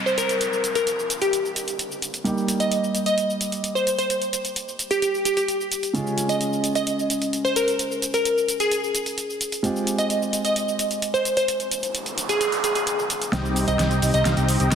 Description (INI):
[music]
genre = EDM, festival progressive house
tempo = 130 BPM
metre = 4/4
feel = straight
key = F minor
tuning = A4 = 440 Hz
[part]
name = dark baby grand piano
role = accompaniment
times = 0.0-14.8 s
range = C3 to Ab4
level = -28 LUFS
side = right 2 dB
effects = digital delay
[part]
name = downlifter and noise sweep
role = sound effects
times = 0.0-2.3, 11.7-13.3 s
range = none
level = -30 LUFS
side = right 1 dB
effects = none
[part]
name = glassy wavetable pluck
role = melody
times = 0.1-14.3 s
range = G4 to Eb5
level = -23 LUFS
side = equal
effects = chorus, digital delay
[part]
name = big-room dance drum kit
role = drums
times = 0.1-14.8 s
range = cabasa, hi-hat, snare drum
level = -28 LUFS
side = equal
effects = overdrive
[part]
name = dense compressed supersaw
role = riff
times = 13.3-14.8 s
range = C4 to Bb5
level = -25 LUFS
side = left 1 dB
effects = low-pass filter, digital delay
[part]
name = fat analog bass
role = bass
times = 13.3-14.8 s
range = C2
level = -23 LUFS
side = left 1 dB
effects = none
[sound]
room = wet lush hall reverb, RT60 2.1 s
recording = dense, heavily limited modern master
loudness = -21 LUFS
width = side -7 dB against mid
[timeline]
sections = 0.0-13.3 A section; 13.3-14.8 B section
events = noise sweep 11.7-13.3; build-up 13.3-14.8; drum fill 13.3-14.8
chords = 0.0 Cm; 2.3 Eb; 5.9 Db; 9.6 Fmadd9; 13.3 Cm